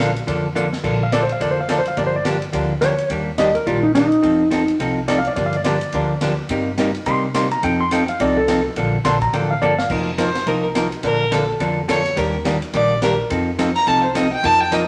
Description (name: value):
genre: country, western swing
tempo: 212 BPM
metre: 4/4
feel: swing 59% on 8ths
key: Bb major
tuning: A4 = 441 Hz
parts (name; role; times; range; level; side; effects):
- archtop guitar, miked and amplified; accompaniment; 0.0-14.8 s; C3 to Bb4; -22 LUFS; equal; none
- upright bass; bass; 0.0-14.9 s; F1 to C3; -30 LUFS; equal; none
- swinging big-band drum kit; drums; 0.0-14.8 s; crash cymbal, hi-hat, kick drum, ride cymbal, snare drum; -31 LUFS; equal; none
- clean lap steel guitar; second line; 1.0-9.9 s; Eb4 to C6; -22 LUFS; equal; none
- rich fiddle; second line; 10.2-14.9 s; A4 to Bb5; -22 LUFS; equal; none
room: wet studio reverb, RT60 0.8 s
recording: none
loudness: -19 LUFS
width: mono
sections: 0.8-9.9 A section; 9.9-14.9 A section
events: drum fill 0.6, 9.6; electric slide guitar solo 0.8-9.9; fiddle solo 9.9-14.9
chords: 0.0 Bbmaj7; 2.0 Gm7; 3.1 Ebmaj7; 4.2 F7; 5.4 Gm7; 6.5 Cm7/G; 7.6 F7; 8.8 Bbmaj7; 9.9 F7sus4; 11.0 Bbmaj7; 12.2 Ebmaj7; 13.3 F7